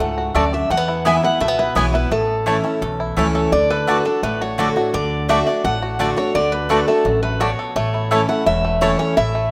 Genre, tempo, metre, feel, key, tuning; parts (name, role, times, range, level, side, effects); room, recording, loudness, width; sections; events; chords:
bluegrass; 170 BPM; 4/4; straight; A4 = 440 Hz
bluegrass banjo; melody; 0.0-9.5 s; A3 to A4; -28 LUFS; equal
picked steel-string acoustic guitar; melody; 0.0-9.5 s; A4 to F#5; -23 LUFS; equal
picked steel-string acoustic guitar; accompaniment; 0.0-9.5 s; E2 to F#4; -24 LUFS; equal
upright bass; bass; 0.0-9.5 s; E1 to E2; -27 LUFS; equal
mandolin; stabs; 0.3-8.9 s; A3 to A5; -26 LUFS; equal
moderate lush hall reverb, RT60 2.5 s; rough home demo mix; -18 LUFS; mono
0.0-3.5 A section; 3.5-9.5 B section
0.0 D; 0.7 E; 2.1 A; 3.5 D; 7.8 A